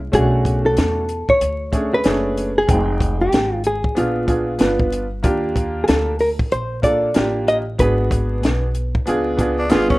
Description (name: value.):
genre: hip hop, jazz-hop.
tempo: 94 BPM.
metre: 4/4.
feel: swing 62% on 16ths.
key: unclear.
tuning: A4 = 440 Hz.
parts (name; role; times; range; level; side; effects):
upright bass; bass; 0.0-10.0 s; F1 to E2; -23 LUFS; equal; none.
hollow-body jazz guitar; melody; 0.1-9.0 s; E#4 to D#5; -20 LUFS; equal; plate reverb.
clear upright piano; accompaniment; 0.1-10.0 s; Ab3 to G5; -21 LUFS; right 1 dB; plate reverb.
compact cocktail drum kit; drums; 0.1-10.0 s; hi-hat, kick drum, snare drum; -20 LUFS; equal; none.
growling tenor saxophone; second line; 9.6-10.0 s; C#4 to E#4; -20 LUFS; equal; slapback echo.
room: moderate small room reverb, RT60 0.5 s.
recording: rough home demo mix, vinyl crackle.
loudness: -16 LUFS.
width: side -20 dB against mid.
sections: 0.0-10.0 A section.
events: none.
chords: 0.1 Bm9; 2.7 Fm7; 4.0 A#7b9; 5.2 D#maj9; 7.8 G#m7b5; 9.1 C#7b9.